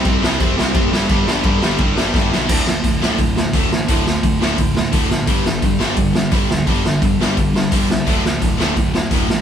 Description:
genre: punk rock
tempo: 172 BPM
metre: 4/4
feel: straight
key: unclear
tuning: A4 = 440 Hz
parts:
  - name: cranked stack guitar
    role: riff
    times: 0.0-9.4 s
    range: D2 to C4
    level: -22 LUFS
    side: left 7 dB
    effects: overdrive
  - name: distorted electric guitar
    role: riff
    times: 0.0-9.4 s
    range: D2 to C4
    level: -22 LUFS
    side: right 6 dB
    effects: distortion
  - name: distorted electric guitar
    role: riff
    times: 0.0-9.4 s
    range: D2 to C4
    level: -23 LUFS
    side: equal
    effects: overdrive
  - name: fuzz picked electric bass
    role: bass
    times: 0.0-9.4 s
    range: D1 to C2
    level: -24 LUFS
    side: equal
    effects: overdrive
  - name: raw garage drum kit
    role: drums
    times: 0.1-9.4 s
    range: crash cymbal, hi-hat, kick drum, snare drum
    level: -17 LUFS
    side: equal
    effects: none
room: light reverb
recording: band playing live in one room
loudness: -14 LUFS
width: side -8 dB against mid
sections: 0.0-2.5 A section; 2.5-9.4 B section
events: drum fill 2.1-2.5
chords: 0.0 C; 0.9 G5; 2.5 D5; 5.3 G5; 8.1 D5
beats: 0.05 0.40 0.75 | 1.10 1.44 1.79 2.14 | 2.49 2.84 3.19 3.53 | 3.88 4.23 4.58 4.93 | 5.28 5.63 5.97 6.32 | 6.67 7.02 7.37 7.72 | 8.06 8.41 8.76 9.11

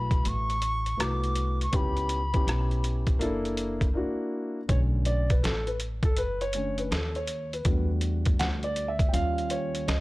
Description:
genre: hip hop, jazz-hop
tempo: 81 BPM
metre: 4/4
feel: swing 66% on 16ths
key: B minor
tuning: A4 = 438 Hz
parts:
  - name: silver concert flute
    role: melody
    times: 0.0-2.9 s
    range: B5 to D6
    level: -32 LUFS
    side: left 1 dB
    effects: none
  - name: dark grand piano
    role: accompaniment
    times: 0.0-10.0 s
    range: D3 to G5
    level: -31 LUFS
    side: equal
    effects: none
  - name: upright bass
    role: bass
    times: 0.0-10.0 s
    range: F#1 to E2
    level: -29 LUFS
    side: equal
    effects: none
  - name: trip hop sampler-style drum kit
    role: drums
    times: 0.1-10.0 s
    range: hi-hat, kick drum, rim click, snare drum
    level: -28 LUFS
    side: equal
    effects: overdrive
room: small room ambience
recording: dry, gritty hardware recording, cassette tape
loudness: -25 LUFS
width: side -20 dB against mid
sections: 0.0-4.7 A section; 4.7-10.0 B section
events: break 4.0-4.7; grand piano solo 4.7-10.0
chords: 0.0 D69; 1.7 C#m7b5; 3.2 F#7alt; 4.7 Bm9; 7.7 Em11; 9.1 D#9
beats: 0.25 0.99 | 1.73 2.47 3.21 3.95 | 4.69 5.43 6.17 6.92 | 7.66 8.40 9.14 9.88

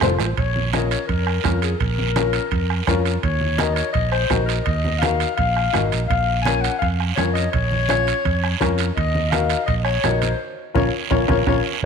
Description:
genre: latin, cumbia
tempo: 168 BPM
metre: 4/4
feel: straight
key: Bb minor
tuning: A4 = 442 Hz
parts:
  - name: warm clarinet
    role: second line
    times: 0.0-11.6 s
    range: Ab4 to Ab5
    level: -24 LUFS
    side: left 6 dB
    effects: none
  - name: dark upright piano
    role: accompaniment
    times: 0.0-11.6 s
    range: Db4 to Db5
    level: -25 LUFS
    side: left 10 dB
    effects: none
  - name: fingered electric bass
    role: bass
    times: 0.0-11.9 s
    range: F1 to F2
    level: -22 LUFS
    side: right 2 dB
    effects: none
  - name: bombo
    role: percussion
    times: 0.0-11.9 s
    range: none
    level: -26 LUFS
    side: right 6 dB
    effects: none
  - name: congas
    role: percussion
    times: 0.0-11.9 s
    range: none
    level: -29 LUFS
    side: right 1 dB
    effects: none
  - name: guiro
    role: percussion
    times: 0.0-11.9 s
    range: none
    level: -30 LUFS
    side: right 14 dB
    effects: none
  - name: timbales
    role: percussion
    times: 0.0-11.6 s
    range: none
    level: -30 LUFS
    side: right 14 dB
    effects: none
room: moderate echo chamber reverb, RT60 1.8 s, small room reverb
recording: 1960s-style stereo with parts hard left and right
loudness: -18 LUFS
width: side -6 dB against mid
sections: 0.4-11.8 A section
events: drum fill 0.0-0.4; clarinet solo 0.4-11.8; band accent 10.4-11.8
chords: 0.4 Bbm; 3.2 Ebmadd9; 6.1 Bbm; 9.0 Ebmadd9; 10.4 Bbm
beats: 0.01 | 0.37 0.73 1.08 1.44 | 1.80 2.16 2.52 2.88 | 3.24 3.59 3.95 4.31 | 4.67 5.03 5.39 5.74 | 6.10 6.46 6.82 7.18 | 7.54 7.89 8.25 8.61 | 8.97 9.32 9.68 10.04 | 10.40 10.75 11.11 11.47 | 11.83

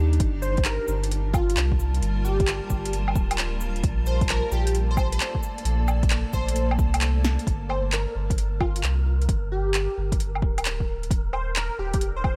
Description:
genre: future garage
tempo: 132 BPM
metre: 4/4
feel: swing 67% on 16ths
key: G minor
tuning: A4 = 440 Hz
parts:
  - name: granular cloud pad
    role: sustained chords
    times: 0.0-7.4, 11.7-12.4 s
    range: G3 to D5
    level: -37 LUFS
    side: equal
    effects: built-in reverb, vintage 12-bit sampler grit, sidechain pumping
  - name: warm sub bass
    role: bass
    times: 0.0-12.4 s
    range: D1 to Eb2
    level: -27 LUFS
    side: equal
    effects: sidechain pumping
  - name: deep house drum kit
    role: drums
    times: 0.1-12.4 s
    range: cabasa, handclaps, hi-hat, snare drum, woodblock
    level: -31 LUFS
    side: equal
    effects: overdrive
  - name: electronic kick drum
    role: drums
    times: 0.2-12.4 s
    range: none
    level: -28 LUFS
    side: equal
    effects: overdrive
  - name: wind-like tuned noise texture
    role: texture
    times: 1.0-12.4 s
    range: Bb4 to A5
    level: -42 LUFS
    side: equal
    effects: built-in reverb
  - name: plucky unison lead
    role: melody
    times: 0.4-12.3 s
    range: F4 to C5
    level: -33 LUFS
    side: equal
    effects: ensemble chorus, digital delay
room: light reverb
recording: none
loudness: -24 LUFS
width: mono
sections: 0.0-7.5 A section; 7.5-12.4 B section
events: drum fill 7.2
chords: 0.2 Gm7; 3.8 Bbmaj7; 7.5 Gm; 11.1 Ebmaj7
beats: | 0.20 0.65 1.11 1.56 | 2.02 2.47 2.93 3.38 | 3.83 4.29 4.74 5.20 | 5.65 6.11 6.56 7.02 | 7.47 7.93 8.38 8.84 | 9.29 9.74 10.20 10.65 | 11.11 11.56 12.02

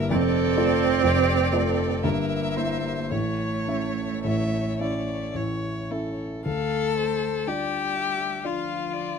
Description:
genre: classical, slow romantic movement for piano quartet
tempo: 53-66 BPM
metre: 3/4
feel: rubato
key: D minor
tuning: A4 = 441 Hz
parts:
  - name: rich violin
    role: melody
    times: 0.0-9.2 s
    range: F4 to E5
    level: -30 LUFS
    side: left 8 dB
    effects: none
  - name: warm violin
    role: second line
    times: 0.0-9.2 s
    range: G4 to F5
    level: -33 LUFS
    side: left 3 dB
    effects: none
  - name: dark concert grand piano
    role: accompaniment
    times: 0.0-9.2 s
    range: F1 to E5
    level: -26 LUFS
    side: equal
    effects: none
  - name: rich cello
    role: second line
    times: 0.1-9.2 s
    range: F3 to C4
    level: -28 LUFS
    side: right 11 dB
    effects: none
room: little or no reverb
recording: close, detailed microphones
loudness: -23 LUFS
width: side -6 dB against mid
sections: 0.0-6.5 A section; 6.5-9.2 B section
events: none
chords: 0.1 Dm/F; 2.0 Edim/G; 3.1 A; 6.5 Dm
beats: | 0.11 1.04 2.04 | 3.12 4.25 5.36 | 6.46 7.47 8.45

